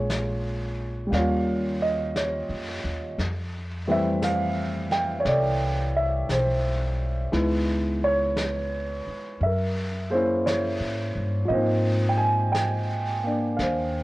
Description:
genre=jazz ballad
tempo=58 BPM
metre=4/4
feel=swing 67% on 8ths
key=unclear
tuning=A4 = 445 Hz
part: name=warm concert grand piano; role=accompaniment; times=0.0-14.0 s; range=E3 to Ab5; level=-25 LUFS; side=right 1 dB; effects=none
part: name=upright bass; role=bass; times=0.0-14.0 s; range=Bb1 to G#2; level=-28 LUFS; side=equal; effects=tube saturation
part: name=vintage brush drum kit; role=drums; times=0.1-14.0 s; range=brushed snare drum, hi-hat, snare drum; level=-35 LUFS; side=left 1 dB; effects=none
room=light reverb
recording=worn, warbling old tape, cassette tape, warbly pitch drift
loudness=-23 LUFS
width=side -18 dB against mid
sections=0.0-14.0 A section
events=none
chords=0.0 Bbm7; 1.1 Eb9; 3.2 Fmaj9; 7.3 Dbm7; 9.4 F#9; 11.5 Ab69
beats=0.09 1.12 2.15 | 3.18 4.21 5.25 6.28 | 7.32 8.36 9.40 10.45 | 11.49 12.54 13.58

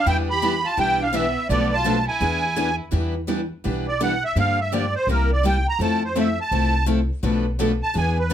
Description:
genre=acoustic string swing (jazz manouche)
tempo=167 BPM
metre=4/4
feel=swing 62% on 8ths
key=E minor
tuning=A4 = 440 Hz
part: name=musette accordion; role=melody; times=0.0-8.3 s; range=Bb4 to B5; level=-22 LUFS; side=right 2 dB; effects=none
part: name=rich violin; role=second line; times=0.0-2.8 s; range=B3 to G4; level=-29 LUFS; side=right 3 dB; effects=none
part: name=picked steel-string acoustic guitar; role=accompaniment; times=0.1-8.3 s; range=B2 to A4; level=-26 LUFS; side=left 6 dB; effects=none
part: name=picked steel-string acoustic guitar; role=accompaniment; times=0.1-8.3 s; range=B2 to B4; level=-28 LUFS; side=right 4 dB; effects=none
part: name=upright bass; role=bass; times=0.1-8.3 s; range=B1 to G2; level=-24 LUFS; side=equal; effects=none
room=moderate studio reverb, RT60 0.5 s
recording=none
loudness=-19 LUFS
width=side -10 dB against mid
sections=0.0-2.9 A section; 2.9-8.3 B section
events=accordion solo 2.9-8.3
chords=0.1 Em7; 1.5 Bm7b5; 2.2 E7; 2.9 Em7; 4.4 Gm7; 5.1 C7; 5.8 Fmaj7; 7.2 Bm7b5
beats=| 0.06 0.42 0.78 1.14 | 1.50 1.85 2.21 2.57 | 2.93 3.29 3.65 4.01 | 4.37 4.72 5.08 5.44 | 5.80 6.16 6.52 6.88 | 7.24 7.60 7.96 8.32

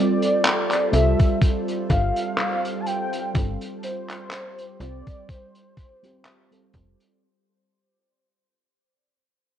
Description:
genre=vaporwave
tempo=62 BPM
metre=4/4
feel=swing 55% on 16ths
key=unclear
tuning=A4 = 440 Hz
part: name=warm velvety synth lead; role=melody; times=0.0-6.7 s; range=C5 to A5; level=-27 LUFS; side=equal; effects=chorus, cassette tape, tape echo
part: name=mellow FM electric piano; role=accompaniment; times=0.0-7.2 s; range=G3 to C5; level=-27 LUFS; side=right 2 dB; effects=phaser, lush chorus, tape echo
part: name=warbly tape-like pad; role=sustained chords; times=0.0-7.2 s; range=G3 to C5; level=-31 LUFS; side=left 1 dB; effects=chorus, built-in reverb, phaser
part: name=crunchy breakbeat drum kit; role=drums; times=0.2-7.2 s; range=handclaps, hi-hat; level=-27 LUFS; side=equal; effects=gated reverb
part: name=slap-like FM bass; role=bass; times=0.9-7.0 s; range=F1 to C2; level=-23 LUFS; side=equal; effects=none
part: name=electronic kick drum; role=drums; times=1.2-7.0 s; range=none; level=-20 LUFS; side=equal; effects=overdrive
room=light reverb, studio reverb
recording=cassette tape, nothing above 10.4 kHz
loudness=-20 LUFS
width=side -10 dB against mid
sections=0.0-7.2 A section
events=fade-out 0.0-7.2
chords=0.0 G9sus4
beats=0.45 1.42 2.38 | 3.35 4.32 5.29 6.25

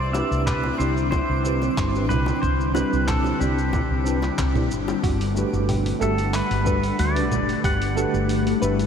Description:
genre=sunset chillout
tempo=92 BPM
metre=4/4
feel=straight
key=G major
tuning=A4 = 442 Hz
part: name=pedal steel guitar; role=melody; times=0.0-8.9 s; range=G4 to F#5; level=-28 LUFS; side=equal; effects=wide subtle chorus, tape echo
part: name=ethereal airy pad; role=sustained chords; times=0.1-8.9 s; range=D3 to F#5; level=-26 LUFS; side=left 2 dB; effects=ensemble chorus, built-in reverb, phaser
part: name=woody fretless electric bass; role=bass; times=0.0-8.9 s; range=G1 to D2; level=-25 LUFS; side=equal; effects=lush chorus
part: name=twinkling granular texture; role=texture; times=0.0-5.0 s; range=D6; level=-41 LUFS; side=right 2 dB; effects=none
part: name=tine electric piano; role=accompaniment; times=0.1-8.8 s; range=A3 to E5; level=-28 LUFS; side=moving between left 2 dB and right 4 dB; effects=overdrive, fast stereo tremolo, auto-pan, vintage 12-bit sampler grit, tape echo
part: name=dusty soul sampler-style drum kit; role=drums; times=0.1-8.9 s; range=congas, handclaps, hi-hat, shaker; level=-32 LUFS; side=right 1 dB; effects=none
part: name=bongos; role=percussion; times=0.1-5.0 s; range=none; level=-36 LUFS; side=left 3 dB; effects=none
part: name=electronic kick drum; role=drums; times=0.5-7.8 s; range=none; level=-26 LUFS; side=equal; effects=none
part: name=soft round pluck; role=arpeggios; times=5.0-8.9 s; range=F#4 to B4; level=-30 LUFS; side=right 2 dB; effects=chorus, tape echo
room=moderate huge ambient reverb, RT60 8.2 s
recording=dreamy mix soaked in reverb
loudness=-20 LUFS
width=side -7 dB against mid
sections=0.0-5.0 A section; 5.0-8.9 B section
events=none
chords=0.0 Cmaj9; 5.0 Gmaj9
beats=0.47 1.12 1.77 | 2.42 3.08 3.73 4.38 | 5.03 5.69 6.34 6.99 | 7.64 8.29

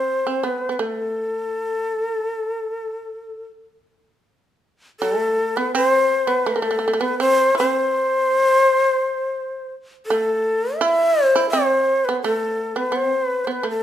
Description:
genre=japanese traditional, Japanese chamber music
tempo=73-88 BPM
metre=4/4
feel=rubato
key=A minor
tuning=A4 = 445 Hz
part: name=breathy shakuhachi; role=melody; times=0.0-13.8 s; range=A4 to E5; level=-19 LUFS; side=left 1 dB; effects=none
part: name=shamisen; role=second line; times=0.0-13.8 s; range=A3 to E4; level=-25 LUFS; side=right 5 dB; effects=none
room=moderate recital hall reverb, RT60 1.4 s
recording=minimal, uncompressed stereo recording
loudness=-18 LUFS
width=side -10 dB against mid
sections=0.0-4.2 A section; 4.2-13.8 B section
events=none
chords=none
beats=0.45 | 1.17 1.91 2.67 3.46 | 4.25 5.01 5.76 6.48 | 7.22 7.95 8.68 9.40 | 10.10 10.80 11.52 12.23 | 12.94 13.67

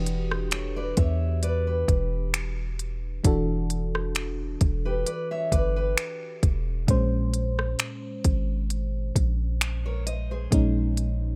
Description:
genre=contemporary R&B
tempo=66 BPM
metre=4/4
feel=swing 54% on 16ths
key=unclear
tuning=A4 = 439 Hz
part: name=FM electric piano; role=accompaniment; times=0.0-11.4 s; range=Bb2 to C5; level=-33 LUFS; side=equal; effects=none
part: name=warm 808-style bass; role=bass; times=0.0-11.4 s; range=E1 to E2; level=-30 LUFS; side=equal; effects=none
part: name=smooth R&B drum kit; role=drums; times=0.1-11.2 s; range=finger snaps, hi-hat, kick drum, rim click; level=-27 LUFS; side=equal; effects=none
part: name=picked steel-string acoustic guitar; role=arpeggios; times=0.5-11.4 s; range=G4 to E5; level=-34 LUFS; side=equal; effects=delay
room=little or no reverb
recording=none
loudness=-26 LUFS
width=mono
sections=0.0-11.4 A section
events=none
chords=0.0 Em9; 6.9 Bbm9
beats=0.52 1.43 2.34 | 3.25 4.16 5.07 5.97 | 6.88 7.79 8.70 9.61 | 10.52

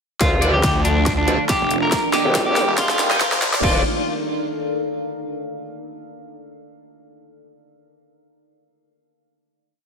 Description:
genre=heavy wobble dubstep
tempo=140 BPM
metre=4/4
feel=swing 54% on 16ths, half-time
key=D phrygian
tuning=A4 = 440 Hz
part: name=electric guitar at the edge of break-up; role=melody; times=0.2-3.8 s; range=D4 to Bb4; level=-22 LUFS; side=left 1 dB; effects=harmonic tremolo, ping-pong delay
part: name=lush unison pad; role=sustained chords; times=0.2-3.8 s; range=D3 to G4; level=-28 LUFS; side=equal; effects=chorus, sidechain pumping
part: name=growl bass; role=bass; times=0.2-3.8 s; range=D1 to D2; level=-20 LUFS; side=equal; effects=chorus, overdrive
part: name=dubstep drum kit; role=drums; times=0.2-3.7 s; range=crash cymbal, hi-hat, snare drum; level=-24 LUFS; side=equal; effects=high-pass filter on snare, high-pass filter on hats, high-pass filter on cymbals
part: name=electronic kick drum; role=drums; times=0.2-3.7 s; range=none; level=-24 LUFS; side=equal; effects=distortion
part: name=riser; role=sound effects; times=1.8-3.6 s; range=none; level=-29 LUFS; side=left 1 dB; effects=none
part: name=deep dark ambient pad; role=texture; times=1.0-5.3 s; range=D4 to D5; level=-27 LUFS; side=right 1 dB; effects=chorus, built-in reverb, sidechain pumping
part: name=tight distorted guitar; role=stabs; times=0.4-3.8 s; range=D4 to Eb5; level=-27 LUFS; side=right 1 dB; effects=distortion, ping-pong delay
part: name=snarling distorted saw bass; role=bass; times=0.6-3.6 s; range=Eb1 to D2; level=-23 LUFS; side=equal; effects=distortion, overdrive
room=moderate lush hall reverb, RT60 1.7 s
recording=high-pass filter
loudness=-17 LUFS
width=side -5 dB against mid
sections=0.2-3.6 build; 3.6-5.3 final chord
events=build-up 0.2-3.6; drum fill 0.2-3.6; filter sweep on analog synth pad 0.2-3.6; filter sweep 0.2-3.6; riser 1.8-3.6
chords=0.2 Dm; 1.9 Eb; 3.6 Dm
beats=| 0.21 0.64 1.06 1.49 | 1.92 2.35 2.78 3.21 | 3.63 4.06 4.49 4.92

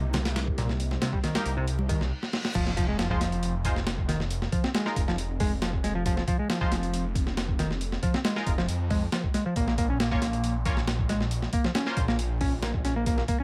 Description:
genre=breakbeat, breaks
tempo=137 BPM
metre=4/4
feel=straight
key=F minor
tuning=A4 = 440 Hz
part: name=phased analog pad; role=sustained chords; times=0.0-2.1 s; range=C3 to Eb4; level=-42 LUFS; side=equal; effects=none
part: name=overdriven picked electric bass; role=riff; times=0.0-13.4 s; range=Bb2 to Db4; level=-32 LUFS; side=equal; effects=tube saturation, vintage 12-bit sampler grit, dub echo
part: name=phased detuned saw bass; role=bass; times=0.0-13.2 s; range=F1 to F2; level=-32 LUFS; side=equal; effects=phaser
part: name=breakbeat sampler-style drum kit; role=drums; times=0.1-13.4 s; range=crash cymbal, hi-hat, kick drum, snare drum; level=-31 LUFS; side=equal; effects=studio ambience
part: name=congas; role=percussion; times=0.1-1.9 s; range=none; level=-40 LUFS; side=equal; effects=none
part: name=band-passed chord stab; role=stabs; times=1.4-12.0 s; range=Ab3 to Db5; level=-38 LUFS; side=equal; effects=chorus, dub echo
part: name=reverse cymbal and sub drop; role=sound effects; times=1.9-4.3 s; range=none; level=-43 LUFS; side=equal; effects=none
room=little or no reverb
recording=vinyl crackle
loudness=-28 LUFS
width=mono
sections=0.0-2.6 A section; 2.6-13.4 B section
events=reverse cymbal 1.9-2.6; stop 2.1-2.6; drum fill 2.2-2.6; drop 2.6-13.4; impact 2.6-4.3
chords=0.0 Cm7; 2.6 Fm7; 9.6 Bbm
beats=0.36 | 0.80 1.24 1.68 2.12 | 2.55 2.99 3.43 3.87 | 4.30 4.74 5.18 5.62 | 6.06 6.50 6.93 7.37 | 7.81 8.25 8.69 9.12 | 9.56 10.00 10.44 10.87 | 11.31 11.75 12.19 12.63 | 13.06

